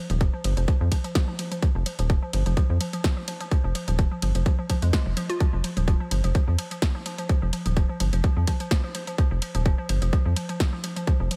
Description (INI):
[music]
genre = minimal techno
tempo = 127 BPM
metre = 4/4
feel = swing 54% on 16ths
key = unclear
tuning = A4 = 440 Hz
[part]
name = hollow square pluck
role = riff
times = 0.0-11.4 s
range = F3 to F4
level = -34 LUFS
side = equal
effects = chorus, sidechain pumping, tape echo
[part]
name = rubbery square bass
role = bass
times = 0.1-11.3 s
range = Eb1 to F2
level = -26 LUFS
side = equal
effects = tube saturation, sidechain pumping
[part]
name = punchy analog drum machine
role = drums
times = 0.1-11.4 s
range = hi-hat, ride cymbal, snare drum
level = -35 LUFS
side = equal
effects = overdrive
[part]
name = electronic kick drum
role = drums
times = 0.2-11.2 s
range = none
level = -25 LUFS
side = equal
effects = overdrive
[sound]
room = little or no reverb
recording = none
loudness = -25 LUFS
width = mono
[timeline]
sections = 0.0-11.4 A section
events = none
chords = none